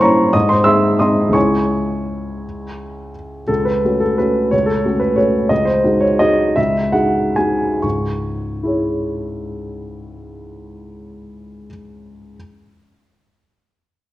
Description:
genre	classical, piano waltz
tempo	122-195 BPM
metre	3/4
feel	rubato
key	C# minor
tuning	A4 = 439 Hz
part	warm grand piano	solo	0.0-12.4 s	C#2 to E6	-15 LUFS	equal	none
room	wet recital hall reverb, RT60 1.6 s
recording	worn, warbling old tape, cassette tape, warbly pitch drift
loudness	-14 LUFS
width	side -15 dB against mid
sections	0.0-3.5 A section; 3.5-7.8 B section; 7.8-10.2 C section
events	slowing down 5.0-7.8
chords	0.3 G#; 1.3 C#m; 3.5 F#m/C#; 5.5 G#7/C#; 7.8 C#m

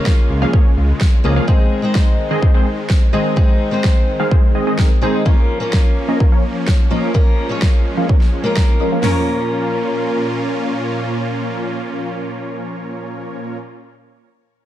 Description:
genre	EDM, festival progressive house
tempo	127 BPM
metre	4/4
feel	straight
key	Bb minor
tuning	A4 = 440 Hz
part	picked steel-string acoustic guitar	accompaniment	0.0-13.7 s	Ab3 to Db5	-22 LUFS	left 1 dB	sidechain pumping, ping-pong delay
part	supersaw pad	sustained chords	0.0-13.6 s	Bb2 to F4	-24 LUFS	right 1 dB	sidechain pumping
part	big-room dance drum kit	drums	0.1-9.1 s	hi-hat, kick drum, snare drum, toms	-13 LUFS	equal	none
part	electronic snare drum	drums	0.1-8.7 s	none	-24 LUFS	equal	none
part	fat analog bass	bass	0.3-1.4 s	Db2	-15 LUFS	equal	sidechain pumping
part	supersaw stab	riff	0.4-13.6 s	Eb3 to F5	-22 LUFS	equal	sidechain pumping, low-pass filter, ping-pong delay
room	light reverb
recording	dark, warm production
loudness	-14 LUFS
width	side -13 dB against mid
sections	0.0-9.0 A section; 9.0-12.8 B section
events	filter sweep on supersaw synth 0.0-9.0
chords	0.0 Db6; 1.5 Ab; 5.3 Bbm

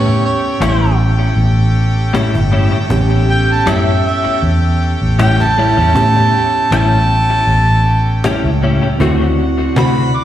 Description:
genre	straight-eighth soul blues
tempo	79 BPM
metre	4/4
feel	swing 56% on 16ths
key	A mixolydian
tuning	A4 = 440 Hz
part	mellow harmonica	second line	0.0-10.2 s	C#5 to D6	-15 LUFS	right 2 dB	overdrive, slapback echo
part	tine electric piano	accompaniment	0.0-10.2 s	B3 to G4	-22 LUFS	right 3 dB	overdrive, fast stereo tremolo, slapback echo
part	bright horn section	sustained chords	0.0-10.2 s	F#4 to G5	-24 LUFS	equal	none
part	vintage muted fingered electric bass	bass	0.0-10.1 s	G1 to C3	-13 LUFS	equal	none
part	cajon	drums	0.1-10.2 s	none	-24 LUFS	right 1 dB	slapback echo
part	direct-recorded clean electric guitar	stabs	0.6-10.0 s	A2 to F#4	-18 LUFS	left 4 dB	ensemble chorus, digital delay, slapback echo
room	light reverb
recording	live gig heard through the venue's PA, recital hall reverb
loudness	-11 LUFS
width	side -12 dB against mid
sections	0.0-10.2 A section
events	harmonica solo 0.0-10.2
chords	0.0 A7; 9.0 D7

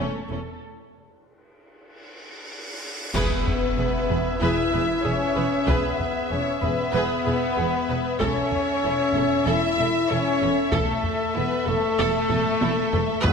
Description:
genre	cinematic, epic orchestral film score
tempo	95 BPM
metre	4/4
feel	straight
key	unclear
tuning	A4 = 445 Hz
part	warm symphonic violin section	melody	0.0-13.3 s	A4 to E5	-34 LUFS	left 4 dB	none
part	warm symphonic violin section	second line	0.0-13.3 s	C#4 to E5	-29 LUFS	left 2 dB	none
part	warm symphonic viola section	accompaniment	0.0-13.3 s	A3 to B4	-30 LUFS	right 2 dB	none
part	warm symphonic cello section	bass	0.0-13.3 s	E2	-32 LUFS	right 4 dB	none
part	warm symphonic double bass section	bass	0.0-13.3 s	E1	-31 LUFS	right 4 dB	none
part	cymbal swell, clash cymbals and concert bass drum	percussion	0.6-4.4 s	none	-33 LUFS	equal	none
part	cymbal swell and impact	sound effects	1.9-5.7 s	none	-36 LUFS	right 1 dB	none
part	warm French horn section	sustained chords	3.1-13.3 s	A3 to E4	-25 LUFS	left 3 dB	none
part	taiko ensemble	drums	3.1-13.3 s	none	-30 LUFS	equal	none
part	warm woodwind section	sustained chords	3.2-13.3 s	E4 to E5	-31 LUFS	equal	none
part	timpani	percussion	13.2-13.3 s	E2	-19 LUFS	equal	none
room	wet scoring stage reverb, RT60 1.9 s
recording	none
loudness	-21 LUFS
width	side -6 dB against mid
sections	0.0-3.1 A section; 3.1-13.3 B section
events	break 0.6-3.1; cymbal swell 1.9-3.1; band accent 3.1-3.8; impact 3.1-5.7; drum fill 12.3-13.3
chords	0.0 A5/E; 3.1 E; 8.2 A/E

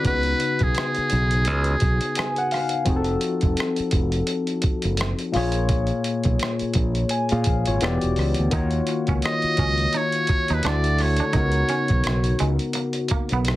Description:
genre	R&B, neo-soul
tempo	85 BPM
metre	4/4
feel	swing 58% on 16ths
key	unclear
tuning	A4 = 440 Hz
part	trumpet with metal mute	melody	0.0-2.5, 9.3-12.4 s	Ab4 to Eb5	-24 LUFS	right 1 dB	slapback echo
part	barky tine electric piano	accompaniment	0.0-13.6 s	Bb2 to Ab5	-24 LUFS	left 3 dB	overdrive, phaser
part	boom bap sampler-style drum kit	drums	0.0-13.6 s	hi-hat, kick drum, rim click	-26 LUFS	right 1 dB	none
part	modern bright fingered electric bass	bass	0.1-13.6 s	E1 to Bb2	-23 LUFS	right 1 dB	none
part	twangy electric guitar	second line	8.5-13.4 s	Ab3 to Eb4	-30 LUFS	right 5 dB	none
room	little or no reverb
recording	heavily compressed radio sound, multiband compression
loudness	-20 LUFS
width	side -16 dB against mid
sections	0.0-13.6 A section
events	tine electric piano fill 1.8-2.9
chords	0.0 Db9sus4; 2.9 F7b9; 5.3 Bbm7; 7.8 Em9; 8.5 Ebm9; 10.6 Dadd9; 11.3 Db13sus4

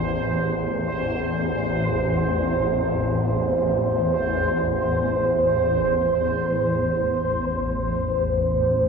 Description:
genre	ambient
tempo	free time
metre	none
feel	none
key	unclear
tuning	A4 = 440 Hz
part	swarming drone	drone	0.0-8.9 s	A1 to E2	-23 LUFS	left 1 dB	built-in reverb
part	bubbling stepped-filter texture	texture	0.0-8.9 s	C5	-23 LUFS	right 2 dB	chorus, built-in reverb
room	wet cathedral reverb, RT60 6.6 s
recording	worn, warbling old tape, cassette tape, warbly pitch drift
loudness	-20 LUFS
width	side -5 dB against mid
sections	0.0-6.5 A section; 6.5-8.9 B section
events	none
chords	0.0 Am

